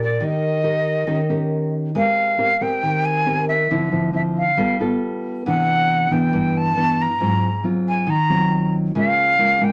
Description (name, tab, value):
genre	bossa nova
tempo	137 BPM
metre	4/4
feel	straight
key	unclear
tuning	A4 = 439 Hz
part	breathy jazz flute	melody	0.0-9.7 s	D5 to Bb5	-22 LUFS	equal	none
part	nylon-string guitar	accompaniment	0.0-9.7 s	G2 to Bb4	-22 LUFS	equal	none
room	wet small room ambience, RT60 0.5 s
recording	none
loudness	-19 LUFS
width	mono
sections	0.0-1.9 A section; 1.9-9.7 B section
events	none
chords	0.0 Ebmaj7; 1.1 Eb7; 1.9 Abmaj9; 3.7 Dm9; 4.6 G9; 5.4 Cmaj9; 7.2 Ab13; 8.9 Db6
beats	| 0.20 0.64 1.07 1.51 | 1.95 2.39 2.82 3.26 | 3.70 4.14 4.57 5.01 | 5.45 5.89 6.32 6.76 | 7.20 7.64 8.07 8.51 | 8.95 9.38